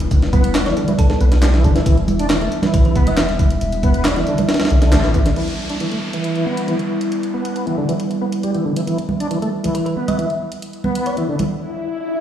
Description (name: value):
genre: breakbeat, breaks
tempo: 137 BPM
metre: 4/4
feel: straight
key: E minor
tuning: A4 = 440 Hz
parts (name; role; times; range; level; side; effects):
- warbly tape-like pad; sustained chords; 0.0-11.5 s; G3 to E5; -24 LUFS; right 1 dB; chorus, built-in reverb, sidechain pumping
- saturated sub bass; bass; 0.0-5.3 s; E1 to B1; -17 LUFS; equal; none
- garage drum kit; drums; 0.0-11.5 s; handclaps, hi-hat; -32 LUFS; equal; overdrive
- breakbeat sampler-style drum kit; drums; 0.1-5.4 s; hi-hat, kick drum, snare drum; -17 LUFS; equal; none
- overdriven tonewheel organ; riff; 0.3-11.4 s; D3 to D4; -22 LUFS; right 1 dB; chorus vibrato, slow rotary speaker, tube saturation, low-pass filter, dub echo
- congas; percussion; 0.3-5.2, 9.1-11.5 s; none; -24 LUFS; right 2 dB; none
- thumb-piano-like synth pluck; melody; 0.7-4.4, 9.7-11.4 s; A4 to E5; -28 LUFS; equal; chorus, AM radio sound, dub echo
- downlifter and swell; sound effects; 5.4-8.9, 11.6-12.2 s; none; -28 LUFS; left 2 dB; none
room: light reverb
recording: played on a big sound system in a bare room, stone room reverb, small room ambience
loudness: -15 LUFS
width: side -10 dB against mid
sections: 0.0-5.4 A section; 5.4-12.2 B section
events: band accent 4.9; break 11.5-12.2; swell 11.6-12.2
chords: 0.0 Em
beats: | 0.11 0.55 0.99 1.43 | 1.86 2.30 2.74 3.18 | 3.62 4.05 4.49 4.93 | 5.37 5.81 6.25 6.68 | 7.12 7.56 8.00 8.44 | 8.87 9.31 9.75 10.19 | 10.62 11.06 11.50 11.94